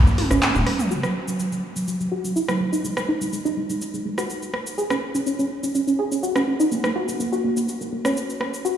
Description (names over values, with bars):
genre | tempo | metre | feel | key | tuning
progressive house | 124 BPM | 4/4 | straight | unclear | A4 = 440 Hz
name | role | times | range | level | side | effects
soft round pluck | arpeggios | 0.1-8.7 s | F#3 to G#4 | -23 LUFS | right 1 dB | analog chorus, tape echo
tight sequencer bass | bass | 0.1-0.6 s | D#1 to G#1 | -22 LUFS | equal | none
deep house drum kit | drums | 0.1-8.8 s | handclaps, hi-hat, ride cymbal, rim click, shaker, toms | -27 LUFS | equal | overdrive
room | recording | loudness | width
wet huge ambient reverb, RT60 4.5 s | played on a big sound system in a bare room, large studio reverb, small room ambience | -21 LUFS | side -9 dB against mid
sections
0.9-8.8 A section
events
drum fill 0.2-0.9; filter sweep on synth pluck 0.9-8.8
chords
none